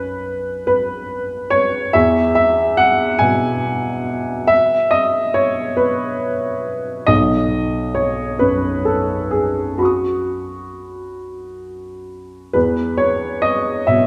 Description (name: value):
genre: neoclassical minimalist piano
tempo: 43-48 BPM (dotted quarters)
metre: 6/8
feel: rubato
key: E major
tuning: A4 = 440 Hz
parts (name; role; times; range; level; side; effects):
- warm upright piano; solo; 0.0-14.1 s; B1 to D#6; -18 LUFS; equal; none
room: wet concert hall reverb, RT60 1.8 s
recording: recorded in a church or concert hall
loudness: -18 LUFS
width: mono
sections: 0.0-12.6 A section; 12.6-14.1 B section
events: none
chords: 0.0 B5; 1.9 E; 7.1 Badd9; 12.6 E5